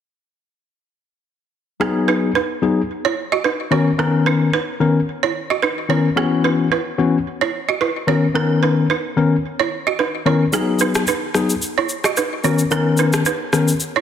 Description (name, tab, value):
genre	afrobeats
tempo	110 BPM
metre	4/4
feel	swing 55% on 16ths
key	G# minor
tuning	A4 = 440 Hz
part	tine electric piano	accompaniment	1.8-13.7 s	D#3 to A#4	-17 LUFS	left 4 dB	overdrive
part	balafon	riff	1.8-14.0 s	B3 to D#5	-20 LUFS	right 6 dB	ping-pong delay
part	electronic shaker and rim click	drums	10.5-13.9 s	none	-22 LUFS	left 1 dB	soft clipping on snare
room	moderate plate reverb, RT60 2.1 s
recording	dense, heavily limited modern master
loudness	-16 LUFS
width	side -9 dB against mid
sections	1.8-14.0 A section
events	none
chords	1.8 G#m7; 3.7 Bmaj9; 6.2 F#7sus4; 8.1 Bmaj9; 10.5 G#m7; 12.4 Bmaj9